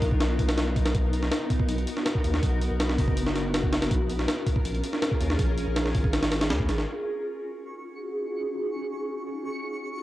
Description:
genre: drum and bass, jungle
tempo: 162 BPM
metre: 4/4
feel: straight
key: Eb minor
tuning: A4 = 440 Hz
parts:
  - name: granular cloud pad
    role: sustained chords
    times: 0.0-10.0 s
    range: Cb4 to Bb4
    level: -31 LUFS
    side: equal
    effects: built-in reverb, cassette tape
  - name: saturated sub bass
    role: bass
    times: 0.0-6.9 s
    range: F#1 to D#2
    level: -28 LUFS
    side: equal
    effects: none
  - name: breakbeat sampler-style drum kit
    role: drums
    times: 0.0-6.9 s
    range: hi-hat, kick drum, snare drum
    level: -25 LUFS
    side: equal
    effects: cassette tape
  - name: twinkling granular texture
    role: texture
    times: 7.7-10.0 s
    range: Db6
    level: -40 LUFS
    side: right 1 dB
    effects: built-in reverb, cassette tape
room: light reverb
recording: home recording on cassette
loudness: -24 LUFS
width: side -15 dB against mid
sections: 0.0-6.9 A section; 6.9-10.0 B section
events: drop 0.0-6.9; filter sweep on ambient pad 6.9-10.0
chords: 0.0 Db13 (rootless); 0.9 Bmaj7; 3.9 Bbm7; 6.9 Ebm11

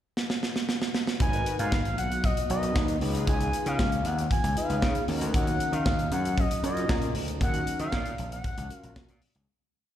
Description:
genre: early-eighties boogie funk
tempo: 116 BPM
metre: 4/4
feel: straight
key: unclear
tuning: A4 = 437 Hz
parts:
  - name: modern studio drum kit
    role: drums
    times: 0.2-9.5 s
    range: hi-hat, kick drum, snare drum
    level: -29 LUFS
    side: equal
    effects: none
  - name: expressive synth lead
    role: melody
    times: 1.2-8.9 s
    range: D#5 to G#5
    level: -32 LUFS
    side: left 1 dB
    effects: chorus, slapback echo
  - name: mellow synth brass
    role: accompaniment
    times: 1.2-9.2 s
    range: C#4 to B4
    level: -34 LUFS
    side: left 1 dB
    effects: chorus, slapback echo
  - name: soft string machine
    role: sustained chords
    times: 1.2-9.4 s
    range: A#2 to F#4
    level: -39 LUFS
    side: equal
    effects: none
  - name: gritty slap bass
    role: bass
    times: 1.2-9.5 s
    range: G#1 to D#3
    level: -30 LUFS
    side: equal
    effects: overdrive
room: small room ambience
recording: live gig heard through the venue's PA, recital hall reverb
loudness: -25 LUFS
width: side -11 dB against mid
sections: 0.0-1.2 pickup bar; 1.2-9.5 verse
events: drum fill 0.2-1.2; fade-out 7.4-9.5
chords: 0.0 N.C.; 1.2 G#m9; 3.0 C#9; 5.1 D#m9

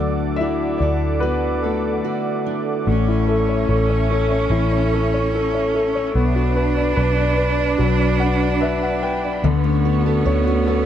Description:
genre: pop ballad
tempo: 73 BPM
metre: 4/4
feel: straight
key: A major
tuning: A4 = 441 Hz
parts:
  - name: dark grand piano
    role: accompaniment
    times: 0.0-10.9 s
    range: D3 to G5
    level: -21 LUFS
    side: left 5 dB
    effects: none
  - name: airy breathy pad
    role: sustained chords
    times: 0.0-10.9 s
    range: A3 to D6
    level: -27 LUFS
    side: right 4 dB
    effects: chorus
  - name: fingerpicked steel-string acoustic guitar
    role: arpeggios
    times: 0.0-3.5, 9.4-10.9 s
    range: D3 to A4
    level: -27 LUFS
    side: right 16 dB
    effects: none
  - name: vintage muted fingered electric bass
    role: bass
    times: 0.0-10.9 s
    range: A1 to D2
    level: -21 LUFS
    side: equal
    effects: none
  - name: rich studio cello section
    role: second line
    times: 2.9-10.9 s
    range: B3 to D4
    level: -24 LUFS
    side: right 6 dB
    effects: none
room: little or no reverb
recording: dry, close 1970s-style studio recording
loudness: -17 LUFS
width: side -10 dB against mid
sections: 0.0-2.9 A section; 2.9-10.9 B section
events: grand piano solo 0.0-2.9; break 2.0-2.9; grand piano fill 7.8-9.4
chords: 0.0 D; 2.9 A; 6.2 Bmadd11; 9.4 Dmaj7

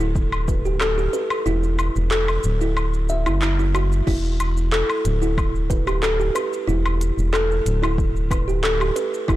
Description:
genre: organic downtempo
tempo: 92 BPM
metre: 4/4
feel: straight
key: E minor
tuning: A4 = 440 Hz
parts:
  - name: kalimba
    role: arpeggios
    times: 0.0-9.4 s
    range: E4 to E5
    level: -23 LUFS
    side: right 1 dB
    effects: tape echo
  - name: round analog bass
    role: bass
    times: 0.0-9.4 s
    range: D1 to F#1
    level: -22 LUFS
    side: equal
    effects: sidechain pumping
  - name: organic electronic drum kit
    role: drums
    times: 0.0-9.4 s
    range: crash cymbal, handclaps, hi-hat, shaker, woodblock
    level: -27 LUFS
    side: left 1 dB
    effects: none
  - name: electronic kick drum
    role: drums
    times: 0.2-9.4 s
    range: none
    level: -23 LUFS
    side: equal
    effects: overdrive
room: light reverb, digital ambience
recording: blown-out, overdriven recording, overdrive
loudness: -18 LUFS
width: side -15 dB against mid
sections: 0.0-4.1 A section; 4.1-9.4 B section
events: kick drops out 1.5-4.1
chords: 0.0 E7sus2; 4.1 E7(no3)

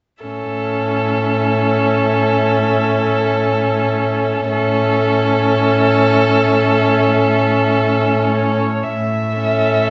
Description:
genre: classical, slow romantic movement for string quartet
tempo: 48-60 BPM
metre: 4/4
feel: rubato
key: A major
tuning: A4 = 439 Hz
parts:
  - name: muted violin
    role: melody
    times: 0.2-9.9 s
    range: C#5 to E5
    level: -25 LUFS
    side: equal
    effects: none
  - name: muted violin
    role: second line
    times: 0.2-9.9 s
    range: A4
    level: -21 LUFS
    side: equal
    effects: none
  - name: muted cello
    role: bass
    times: 0.2-9.8 s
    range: A2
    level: -22 LUFS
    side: equal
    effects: none
  - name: muted viola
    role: accompaniment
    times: 0.3-9.9 s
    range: C#4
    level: -20 LUFS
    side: equal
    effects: none
room: wet concert hall reverb, RT60 2.3 s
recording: recorded in a church or concert hall, nothing above 7.8 kHz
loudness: -16 LUFS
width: mono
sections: 0.2-8.9 A section; 8.9-9.9 B section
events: none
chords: 0.2 A

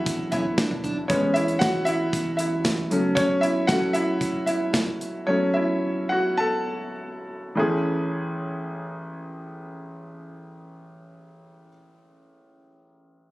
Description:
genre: piano-driven pop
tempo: 98-116 BPM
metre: 4/4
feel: straight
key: A major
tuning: A4 = 441 Hz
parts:
  - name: clear grand piano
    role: accompaniment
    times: 0.0-13.3 s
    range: A1 to A5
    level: -24 LUFS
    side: equal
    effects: none
  - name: saturated sub bass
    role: bass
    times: 0.0-3.1 s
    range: D1 to A1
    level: -33 LUFS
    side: equal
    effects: none
  - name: modern studio drum kit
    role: drums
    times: 0.1-5.1 s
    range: hi-hat, kick drum, snare drum, toms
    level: -27 LUFS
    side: equal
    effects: none
  - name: picked steel-string acoustic guitar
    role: riff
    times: 0.3-1.0 s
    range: C#4 to D4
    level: -33 LUFS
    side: right 2 dB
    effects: none
room: light reverb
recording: recorded on a phone in the room, studio reverb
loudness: -22 LUFS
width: side -18 dB against mid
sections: 0.0-7.6 A section; 7.6-12.5 B section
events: grand piano solo 0.0-7.6; slowing down 3.2-7.6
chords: 0.0 Dmaj7; 1.1 Amaj7; 2.9 F#m; 7.6 Amaj7

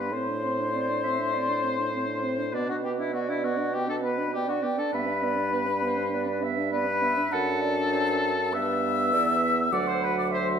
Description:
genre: quick classical-period movement for wind quintet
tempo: 100 BPM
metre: 4/4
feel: straight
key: G major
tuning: A4 = 440 Hz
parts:
  - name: mellow hollow concert flute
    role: melody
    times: 0.0-10.6 s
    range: D5 to E6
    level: -29 LUFS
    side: left 5 dB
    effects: none
  - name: clear oboe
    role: second line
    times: 0.0-10.5 s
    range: D4 to E5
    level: -31 LUFS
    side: left 1 dB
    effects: none
  - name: mellow French horn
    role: accompaniment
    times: 0.0-10.6 s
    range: F#3 to D4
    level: -32 LUFS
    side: right 1 dB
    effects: none
  - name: warm clarinet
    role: accompaniment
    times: 0.0-10.6 s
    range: B4 to F#5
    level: -32 LUFS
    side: right 7 dB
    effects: none
  - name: warm bassoon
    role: bass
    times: 0.0-10.6 s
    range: D2 to B2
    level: -31 LUFS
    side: right 2 dB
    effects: none
room: wet recital hall reverb, RT60 1.4 s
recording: none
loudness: -24 LUFS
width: side -7 dB against mid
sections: 0.0-10.6 A section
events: none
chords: 0.1 D5/A; 2.5 Gmaj13/B; 4.9 G; 7.3 D/F#; 8.5 G; 9.7 D

